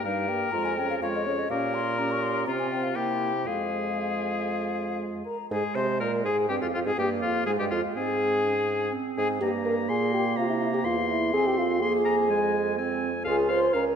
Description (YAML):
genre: quick classical-period movement for wind quintet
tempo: 124 BPM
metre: 4/4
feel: rubato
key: F minor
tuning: A4 = 440 Hz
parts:
  - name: mellow hollow silver concert flute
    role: melody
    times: 0.0-13.8 s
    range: Db5 to Db6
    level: -32 LUFS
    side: left 8 dB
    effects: none
  - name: bright oboe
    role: second line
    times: 0.0-13.8 s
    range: F4 to C6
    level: -32 LUFS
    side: left 4 dB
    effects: none
  - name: clear clarinet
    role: accompaniment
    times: 0.0-14.0 s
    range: Ab3 to Ab4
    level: -32 LUFS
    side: right 7 dB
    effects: none
  - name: mellow French horn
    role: accompaniment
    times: 0.0-14.0 s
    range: G3 to C5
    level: -28 LUFS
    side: equal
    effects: none
  - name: warm bassoon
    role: bass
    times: 0.1-14.0 s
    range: Db2 to C3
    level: -31 LUFS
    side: right 3 dB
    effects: none
room: moderate scoring stage reverb, RT60 2.2 s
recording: none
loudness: -24 LUFS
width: side -7 dB against mid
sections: 0.0-5.5 A section; 5.5-14.0 B section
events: none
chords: 0.0 Eb/G; 0.5 Db/F; 1.5 Gdim/Bb; 2.5 F5/C; 3.0 C7; 3.5 Fm; 5.5 Abadd9; 6.5 Fm; 9.4 Gmadd11; 10.4 C7; 11.3 Fm; 13.3 Db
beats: 0.05 0.54 1.03 | 1.51 1.99 2.47 2.96 | 3.47 3.98 4.49 5.00 | 5.51 6.01 6.50 6.99 | 7.47 7.96 8.45 8.93 | 9.42 9.89 10.37 10.85 | 11.34 11.82 12.30 12.78 | 13.26 13.75